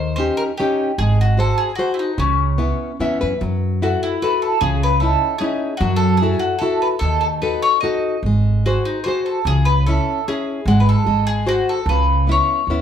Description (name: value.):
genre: italian folk, Italian serenade.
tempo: 149 BPM.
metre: 3/4.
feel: straight.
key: C# minor.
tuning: A4 = 440 Hz.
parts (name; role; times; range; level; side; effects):
bowl-back mandolin; melody; 0.0-12.8 s; C#4 to D#5; -21 LUFS; left 1 dB; none.
nylon-string guitar; accompaniment; 0.0-12.8 s; C#3 to E5; -21 LUFS; left 2 dB; none.
upright bass; bass; 0.0-12.8 s; G#1 to F#2; -18 LUFS; right 1 dB; none.
room: moderate large studio reverb, RT60 1.1 s.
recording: band playing live in one room.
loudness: -16 LUFS.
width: side -8 dB against mid.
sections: 0.0-3.4 A section; 3.4-12.8 B section.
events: nylon-string guitar fill 2.8-3.4.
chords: 0.0 D#7; 1.0 G#7; 2.2 C#m7; 3.4 F#m7; 4.6 C#madd9; 5.8 F#m7; 7.0 D#dim; 8.2 G#7; 9.5 C#m; 10.7 G#7(no3); 11.1 G#7; 11.9 C#m7.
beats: 0.17 0.58 | 0.98 1.38 1.78 | 2.18 2.59 3.00 | 3.40 3.81 4.22 | 4.62 5.02 5.42 | 5.82 6.22 6.62 | 7.02 7.43 7.83 | 8.24 8.65 9.06 | 9.47 9.87 10.27 | 10.67 11.07 11.47 | 11.87 12.28 12.69.